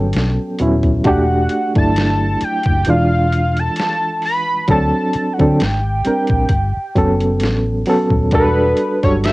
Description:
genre	R&B, neo-soul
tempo	66 BPM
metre	4/4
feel	swing 54% on 16ths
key	E dorian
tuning	A4 = 441 Hz
part	fat analog lead	melody	0.0-9.3 s	B4 to B5	-20 LUFS	equal	chorus, cassette tape
part	barky reed electric piano	accompaniment	0.0-9.3 s	E3 to A#4	-17 LUFS	right 1 dB	overdrive, fast tremolo, cassette tape
part	vintage muted fingered electric bass	bass	0.0-9.3 s	D#1 to D3	-18 LUFS	equal	transformer saturation
part	boom bap sampler-style drum kit	drums	0.1-9.3 s	hi-hat, kick drum, snare drum	-20 LUFS	equal	cassette tape
room	moderate booth ambience, RT60 0.2 s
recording	home recording on cassette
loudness	-14 LUFS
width	side -20 dB against mid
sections	0.0-9.3 A section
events	none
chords	0.0 Gmaj9#11; 1.1 Em11; 2.9 E7b9; 4.7 D7; 5.6 G#maj9#11; 6.5 Gmaj9#11; 8.3 Em11

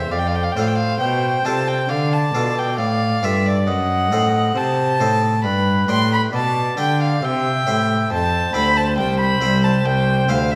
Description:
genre	classical, baroque-style sonata movement with continuo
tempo	68 BPM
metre	4/4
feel	straight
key	C major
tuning	A4 = 440 Hz
part	warm oboe	melody	0.0-10.6 s	B4 to E5	-28 LUFS	equal	none
part	rich violin	second line	0.0-10.6 s	D5 to C6	-23 LUFS	equal	none
part	harpsichord	accompaniment	0.0-10.6 s	C2 to D5	-26 LUFS	equal	none
part	rich cello	bass	0.0-10.6 s	C2 to D3	-23 LUFS	equal	none
room	wet recital hall reverb, RT60 1.4 s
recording	none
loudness	-19 LUFS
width	mono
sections	0.0-10.6 A section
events	none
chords	0.1 Dm/F; 3.7 F#dim7; 5.4 G; 7.2 C

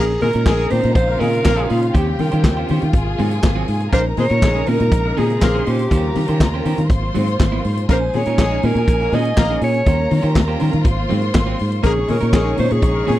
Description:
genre	disco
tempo	121 BPM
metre	4/4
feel	straight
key	Bb minor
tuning	A4 = 440 Hz
part	breathy alto saxophone	melody	0.0-13.2 s	F4 to Eb5	-21 LUFS	equal	none
part	warm studio violin section	second line	0.0-13.2 s	F4 to Db6	-27 LUFS	left 1 dB	none
part	electric guitar at the edge of break-up	accompaniment	0.0-13.2 s	Gb3 to C5	-28 LUFS	right 9 dB	none
part	warm studio string section	sustained chords	0.0-13.2 s	Bb2 to F4	-28 LUFS	left 1 dB	none
part	warm horn section	stabs	0.0-13.1 s	Ab3 to Bb4	-25 LUFS	left 4 dB	none
part	fingered electric bass	bass	0.0-13.2 s	Ab1 to Eb3	-19 LUFS	equal	none
part	vintage drum kit	drums	0.2-13.2 s	handclaps, hi-hat, kick drum, snare drum	-16 LUFS	equal	none
part	congas	percussion	0.2-13.2 s	none	-27 LUFS	left 6 dB	none
room	small room reverb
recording	dry, close 1970s-style studio recording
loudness	-15 LUFS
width	side -14 dB against mid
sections	0.0-13.2 A section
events	none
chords	0.0 Bbm11; 1.9 Eb13; 2.9 Ab13; 3.9 Bbm11; 5.9 Eb13; 6.9 Ab13; 7.9 Bbm7; 9.9 Eb13; 10.9 Ab13; 11.8 Bbm11

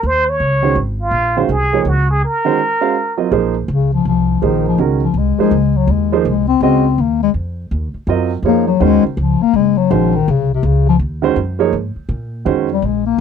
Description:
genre	modal jazz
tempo	164 BPM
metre	3/4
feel	swing 64% on 8ths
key	Bb minor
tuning	A4 = 436 Hz
part	trumpet with plunger mute	melody	0.0-3.2 s	F4 to Db5	-16 LUFS	right 1 dB	none
part	upright bass	bass	0.0-13.2 s	Gb1 to Bb2	-18 LUFS	equal	none
part	warm grand piano	accompaniment	0.6-12.7 s	Eb3 to F5	-16 LUFS	right 10 dB	none
part	mellow bass clarinet	second line	3.7-13.2 s	C3 to C4	-14 LUFS	left 12 dB	none
room	light reverb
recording	dry, close 1970s-style studio recording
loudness	-13 LUFS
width	side -7 dB against mid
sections	0.0-3.3 A section; 3.3-13.2 B section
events	bass clarinet solo 3.3-13.2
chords	0.0 Ebm11; 3.3 Bbm11; 7.7 Ebm11; 12.1 Bbm11

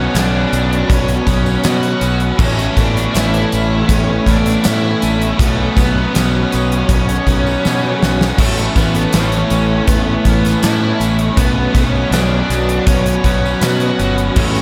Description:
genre	rock, shoegaze and dream pop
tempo	80 BPM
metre	4/4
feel	straight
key	unclear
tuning	A4 = 441 Hz
part	octave-fuzz lead guitar	melody	0.0-14.6 s	A3 to F#4	-24 LUFS	equal	distortion, analog delay
part	glassy FM pad	sustained chords	0.0-14.6 s	F#4 to B5	-28 LUFS	equal	ensemble chorus, built-in reverb
part	twelve-string electric guitar	arpeggios	0.0-14.6 s	E3 to C#4	-27 LUFS	equal	none
part	biting overdriven guitar	riff	0.0-14.6 s	A2 to E4	-24 LUFS	equal	subtle chorus
part	overdriven electric guitar	riff	0.0-14.6 s	A2 to A4	-23 LUFS	equal	reverse reverb
part	growling fingered electric bass	bass	0.0-14.6 s	G1 to B2	-20 LUFS	equal	overdrive
part	tambourine	percussion	0.1-14.5 s	none	-40 LUFS	equal	none
part	gated 80s drum kit	drums	0.2-14.6 s	crash cymbal, hi-hat, kick drum, snare drum	-19 LUFS	equal	none
room	wet cathedral reverb, RT60 5.8 s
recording	dreamy mix soaked in reverb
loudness	-14 LUFS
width	mono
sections	0.0-14.6 A section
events	drum fill 7.6-8.4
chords	0.0 Bsus2; 2.4 Aadd9; 5.4 Bsus2; 8.4 Aadd9; 11.4 Bsus2

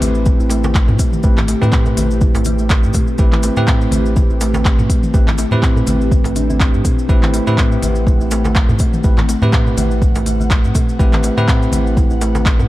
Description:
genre	afro house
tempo	123 BPM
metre	4/4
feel	swing 56% on 16ths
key	A dorian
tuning	A4 = 439 Hz
part	ethereal airy pad	sustained chords	0.0-12.7 s	A3 to F#5	-26 LUFS	equal	ensemble chorus, built-in reverb, vintage 12-bit sampler grit, sidechain pumping
part	kalimba	arpeggios	0.0-12.4 s	A3 to E4	-21 LUFS	equal	sidechain pumping, tape echo
part	bell-like tine electric piano	stabs	0.0-12.7 s	C4 to B4	-23 LUFS	right 1 dB	wide subtle chorus, sidechain pumping, tape echo
part	round analog bass	bass	0.0-12.7 s	A1 to A2	-18 LUFS	equal	sidechain pumping
part	afro-pop drum kit	drums	0.0-12.6 s	handclaps, hi-hat, toms	-23 LUFS	left 1 dB	none
part	cabasa	percussion	0.0-12.7 s	none	-34 LUFS	left 2 dB	none
part	congas	percussion	0.0-12.7 s	none	-24 LUFS	left 1 dB	none
part	electronic kick drum	drums	0.3-12.6 s	none	-14 LUFS	equal	none
part	darbuka	percussion	0.3-12.7 s	none	-26 LUFS	right 1 dB	none
room	digital ambience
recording	dark, warm production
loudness	-12 LUFS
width	side -16 dB against mid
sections	0.0-12.7 A section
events	none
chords	0.0 Am7

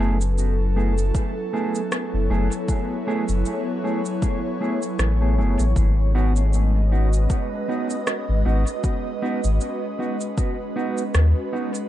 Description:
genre	ambient dub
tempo	78 BPM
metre	4/4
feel	swing 56% on 16ths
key	F# dorian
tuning	A4 = 441 Hz
part	airy breathy pad	sustained chords	0.0-11.9 s	F#3 to D#5	-27 LUFS	equal	chorus
part	mellow electric guitar	stabs	0.0-11.7 s	A3 to G#4	-28 LUFS	right 2 dB	dub echo
part	warm sub bass	bass	0.0-11.3 s	F#1 to D#2	-19 LUFS	equal	none
part	electronic cabasa and rim click	drums	0.2-11.9 s	none	-30 LUFS	equal	overdrive, dub echo
part	electronic kick drum	drums	1.1-10.5 s	none	-23 LUFS	equal	overdrive
room	little or no reverb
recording	echo-heavy mix, nothing above 10.9 kHz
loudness	-20 LUFS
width	side -13 dB against mid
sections	0.0-11.9 A section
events	none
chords	0.0 F#m11; 5.8 G#m7

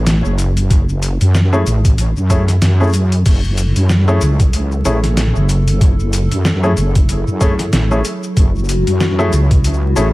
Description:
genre	glitch hop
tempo	94 BPM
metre	4/4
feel	swing 58% on 16ths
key	F# minor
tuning	A4 = 440 Hz
part	wobble bass	bass	0.0-10.1 s	F#1 to F#2	-14 LUFS	equal	chorus, tube saturation
part	boom bap sampler-style drum kit	drums	0.1-10.1 s	crash cymbal, hi-hat, shaker, snare drum	-20 LUFS	equal	small room ambience
part	electronic kick drum	drums	0.7-9.6 s	none	-13 LUFS	equal	small room ambience
part	warm grand piano	stabs	1.5-10.1 s	A3 to G#4	-21 LUFS	left 1 dB	sidechain pumping, tape echo
part	warbly tape-like pad	sustained chords	3.6-10.1 s	F#3 to A4	-24 LUFS	equal	chorus, built-in reverb, vintage 12-bit sampler grit, sidechain pumping
room	digital ambience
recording	vinyl crackle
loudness	-12 LUFS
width	side -19 dB against mid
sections	0.0-10.1 A section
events	none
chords	0.0 F#m7

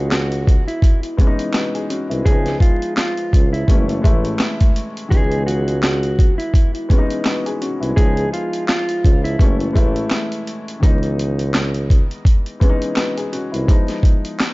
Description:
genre	hip hop, boom-bap hip-hop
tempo	84 BPM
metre	4/4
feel	swing 57% on 16ths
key	C# minor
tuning	A4 = 440 Hz
part	mellow electric guitar	melody	0.0-9.6 s	E4 to G#4	-24 LUFS	equal	spring reverb, high-pass filter, low-pass filter, digital delay
part	dark upright piano	accompaniment	0.0-14.5 s	D#3 to B4	-24 LUFS	left 2 dB	cassette tape, high-pass filter, low-pass filter
part	warm tuba	bass	0.0-13.7 s	F#1 to C#2	-21 LUFS	equal	none
part	boom bap sampler-style drum kit	drums	0.1-14.5 s	handclaps, hi-hat, kick drum, snare drum	-15 LUFS	equal	none
room	digital ambience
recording	vinyl crackle, nothing above 7.6 kHz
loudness	-15 LUFS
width	side -22 dB against mid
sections	0.0-14.5 A section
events	none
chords	0.0 C#m7; 2.3 C#7; 3.7 F#m7; 5.1 C#m7; 8.0 C#7; 9.4 F#m7; 10.8 C#m7; 13.7 Fm7b5

